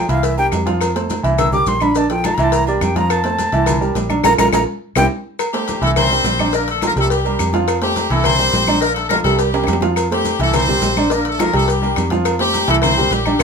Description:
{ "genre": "latin, salsa", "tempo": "210 BPM", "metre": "4/4", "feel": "straight", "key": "unclear", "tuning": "A4 = 441 Hz", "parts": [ { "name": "breathy bright concert flute", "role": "melody", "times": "0.0-5.1 s", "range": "D5 to E6", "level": "-18 LUFS", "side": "left 1 dB", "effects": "none" }, { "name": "warm upright piano", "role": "accompaniment", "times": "0.0-13.4 s", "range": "D3 to F5", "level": "-19 LUFS", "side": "right 3 dB", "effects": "none" }, { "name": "vintage muted fingered electric bass", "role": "bass", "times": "0.0-13.4 s", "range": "Bb1 to F2", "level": "-21 LUFS", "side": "equal", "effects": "none" }, { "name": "agogo bells and timbales", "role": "percussion", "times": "0.1-13.4 s", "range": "none", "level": "-26 LUFS", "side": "right 4 dB", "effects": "none" }, { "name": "congas", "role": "percussion", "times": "0.1-13.4 s", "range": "none", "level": "-25 LUFS", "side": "left 1 dB", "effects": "none" }, { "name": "cowbell", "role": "percussion", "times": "0.1-13.4 s", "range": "none", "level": "-25 LUFS", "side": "left 5 dB", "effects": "none" }, { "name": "maracas", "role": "percussion", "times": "0.1-13.4 s", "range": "none", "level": "-32 LUFS", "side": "left 4 dB", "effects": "none" }, { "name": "claves", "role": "percussion", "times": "0.5-13.4 s", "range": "none", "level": "-28 LUFS", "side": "left 9 dB", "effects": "none" }, { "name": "brilliant horn section", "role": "melody", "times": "5.5-13.4 s", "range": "G3 to C5", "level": "-18 LUFS", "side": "left 3 dB", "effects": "none" } ], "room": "moderate small room reverb, RT60 0.5 s", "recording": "minimal, uncompressed stereo recording", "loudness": "-14 LUFS", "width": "side -5 dB against mid", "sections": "0.0-5.4 A section; 5.4-13.4 B section", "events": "flute solo 0.0-5.4; drum fill 4.2-5.4, 9.5-10.0; band accent 4.2-5.4", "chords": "0.2 C7; 0.8 F; 1.4 C7; 2.0 Bbmaj7; 2.5 C7; 3.1 F; 3.7 C7; 4.2 Bb5; 4.8 C; 5.4 C6; 6.0 C7; 6.5 Bbmaj7; 7.1 C5; 7.7 Fadd9; 8.3 C7; 8.8 Bbmaj7; 9.4 C5; 10.0 Fadd9; 10.5 C7; 11.1 Bbmaj7; 11.7 C5; 12.3 Fadd9; 12.8 C7" }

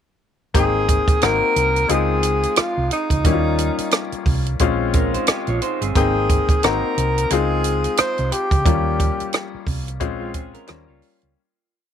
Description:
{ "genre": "lush 1970s-style soul", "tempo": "89 BPM", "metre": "4/4", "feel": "swing 58% on 16ths", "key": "Ab major", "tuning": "A4 = 440 Hz", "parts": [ { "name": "clear grand piano", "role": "accompaniment", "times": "0.5-11.4 s", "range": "G3 to G5", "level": "-23 LUFS", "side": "left 11 dB", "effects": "none" }, { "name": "hollow-body short-scale fingered electric bass", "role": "bass", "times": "0.5-11.3 s", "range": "G1 to Eb2", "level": "-23 LUFS", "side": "right 2 dB", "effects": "none" }, { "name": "compact cocktail drum kit", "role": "drums", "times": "0.5-11.3 s", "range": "hi-hat, kick drum, rim click", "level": "-20 LUFS", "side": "right 2 dB", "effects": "none" }, { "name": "mellow tenor saxophone", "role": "melody", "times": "0.6-9.7 s", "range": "Eb4 to C5", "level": "-21 LUFS", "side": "right 1 dB", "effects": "none" }, { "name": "electric guitar through a small old amp", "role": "riff", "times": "4.9-6.1, 10.2-11.3 s", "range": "Ab3 to Eb5", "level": "-27 LUFS", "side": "right 12 dB", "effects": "none" } ], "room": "light reverb, studio ambience", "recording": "1960s-style stereo with parts hard left and right", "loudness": "-17 LUFS", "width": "side -9 dB against mid", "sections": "0.5-11.4 verse", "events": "fade-out 8.7-11.4", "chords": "0.5 Abmaj9; 1.2 Ab7; 1.9 Dbmaj9; 3.2 Eb7; 4.6 Bbm9; 6.0 Abmaj9; 6.6 Ab7; 7.3 Dbmaj9; 8.7 Eb7; 10.0 Bbm9; 10.7 Eb7" }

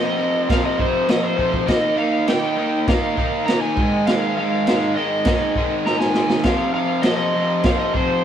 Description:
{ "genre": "garage rock duo or trio", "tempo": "101 BPM", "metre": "4/4", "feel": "straight", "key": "F minor", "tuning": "A4 = 437 Hz", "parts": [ { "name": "overdriven slide guitar", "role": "melody", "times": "0.0-8.2 s", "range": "C5 to Bb5", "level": "-22 LUFS", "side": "equal", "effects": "slapback echo" }, { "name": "raw garage guitar", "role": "riff", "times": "0.0-8.2 s", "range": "F2 to Eb4", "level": "-21 LUFS", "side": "equal", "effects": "overdrive, spring reverb" }, { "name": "crunchy breakbeat drum kit", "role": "drums", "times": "0.5-8.1 s", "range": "crash cymbal, kick drum, snare drum", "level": "-22 LUFS", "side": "equal", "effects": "none" } ], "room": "wet small room reverb, RT60 0.5 s", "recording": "band playing live in one room", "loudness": "-17 LUFS", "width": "side -9 dB against mid", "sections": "0.0-8.2 A section", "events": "drum fill 5.9-6.5", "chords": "0.0 F5; 1.7 Eb; 3.8 Ab5; 6.5 F5" }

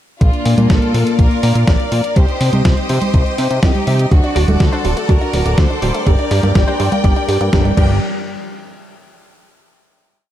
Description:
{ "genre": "italo disco", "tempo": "123 BPM", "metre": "4/4", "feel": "straight", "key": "G minor", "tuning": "A4 = 440 Hz", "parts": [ { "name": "clear symphonic violin section", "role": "melody", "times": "0.2-8.0 s", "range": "D4 to G5", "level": "-22 LUFS", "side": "left 1 dB", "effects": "vintage 12-bit sampler grit, ping-pong delay" }, { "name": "string machine, full ensemble", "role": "sustained chords", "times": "0.2-8.0 s", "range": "G3 to Eb6", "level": "-22 LUFS", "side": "left 2 dB", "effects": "ensemble chorus" }, { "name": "fat analog bass", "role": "bass", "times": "0.2-8.0 s", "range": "D1 to C3", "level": "-16 LUFS", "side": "equal", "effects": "none" }, { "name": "clean 12-bit digital drum machine", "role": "drums", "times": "0.2-7.9 s", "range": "congas, crash cymbal, hi-hat, snare drum", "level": "-21 LUFS", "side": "right 1 dB", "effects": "none" }, { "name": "electronic kick drum", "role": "drums", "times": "0.2-7.9 s", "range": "none", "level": "-14 LUFS", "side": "equal", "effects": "none" }, { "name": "analog pluck", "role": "arpeggios", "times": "4.1-8.0 s", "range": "F#3 to D4", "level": "-23 LUFS", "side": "right 4 dB", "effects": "chorus, cassette tape, ping-pong delay" }, { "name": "direct-recorded clean electric guitar", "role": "stabs", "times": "4.3-8.0 s", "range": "D3 to A5", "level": "-26 LUFS", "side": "left 2 dB", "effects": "ensemble chorus" } ], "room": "light reverb, digital ambience", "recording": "dark, warm production", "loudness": "-12 LUFS", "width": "side -12 dB against mid", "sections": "0.2-8.0 chorus; 8.0-10.0 final hit", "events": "band accent 7.5", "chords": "0.2 Bb; 2.2 Cm; 4.1 D; 6.1 Gm; 8.0 N.C." }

